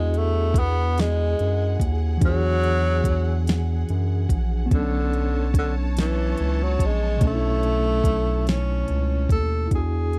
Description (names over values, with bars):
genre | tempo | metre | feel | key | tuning
slow six-eight R&B | 48 BPM (dotted quarters) | 6/8 | straight | B dorian | A4 = 440 Hz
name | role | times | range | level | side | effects
breathy tenor saxophone | melody | 0.0-10.2 s | D3 to A4 | -28 LUFS | equal | slapback echo
mellow tine electric piano | accompaniment | 0.0-10.2 s | B2 to G#4 | -31 LUFS | equal | none
warm studio string section | sustained chords | 0.0-9.7 s | G#4 to A5 | -41 LUFS | equal | none
round analog bass | bass | 0.0-10.2 s | A#1 to F#2 | -25 LUFS | equal | none
smooth R&B drum kit | drums | 0.1-10.2 s | hi-hat, kick drum, snare drum | -24 LUFS | equal | none
room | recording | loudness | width
little or no reverb | dry, close 1970s-style studio recording | -22 LUFS | mono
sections
0.0-9.7 A section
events
none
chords
0.0 E9; 4.7 Bm9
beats
0.97 | 2.22 3.47 | 4.72 5.97 | 7.22 8.47 | 9.72